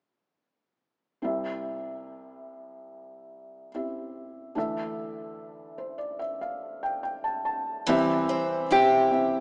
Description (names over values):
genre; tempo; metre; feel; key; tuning
acoustic folk-pop ballad; 72 BPM; 4/4; straight; C major; A4 = 441 Hz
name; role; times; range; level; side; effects
felt-muted upright piano; accompaniment; 1.2-9.4 s; C2 to A5; -33 LUFS; equal; none
picked steel-string acoustic guitar; arpeggios; 7.9-9.4 s; E3 to G4; -29 LUFS; equal; none
nylon-string guitar; melody; 8.7-9.4 s; G4; -23 LUFS; equal; none
room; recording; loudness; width
wet lush hall reverb, RT60 2.6 s; rough home demo mix, small speaker sound; -28 LUFS; mono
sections
1.2-7.9 A section; 7.9-9.4 B section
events
none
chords
1.2 C; 4.6 Dsus2; 7.9 C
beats
| 1.24 2.08 2.91 3.73 | 4.56 5.38 6.21 7.04 | 7.87 8.71